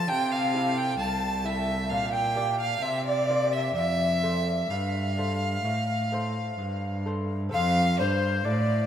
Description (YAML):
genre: classical, baroque-style sonata movement with continuo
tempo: 64 BPM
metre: 4/4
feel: rubato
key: F major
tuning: A4 = 440 Hz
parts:
  - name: alto recorder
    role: melody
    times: 0.0-8.9 s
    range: C5 to A5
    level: -30 LUFS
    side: left 4 dB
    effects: none
  - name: clear violin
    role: second line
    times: 0.0-8.9 s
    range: C5 to A5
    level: -29 LUFS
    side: right 2 dB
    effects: none
  - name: lute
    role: accompaniment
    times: 0.0-8.9 s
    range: F2 to D5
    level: -36 LUFS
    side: left 1 dB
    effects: none
  - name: rich cello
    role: bass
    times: 0.0-8.9 s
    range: C2 to F3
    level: -28 LUFS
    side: right 1 dB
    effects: none
room: wet cathedral reverb, RT60 5.7 s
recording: in a vast, echoing space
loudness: -24 LUFS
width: side -9 dB against mid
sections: 0.0-7.5 A section; 7.5-8.9 B section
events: none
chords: 0.1 Am/C; 1.9 Gm/Bb; 2.8 C5; 3.8 F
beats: | 0.09 0.99 1.90 2.82 | 3.76 4.70 5.65 6.59 | 7.53 8.45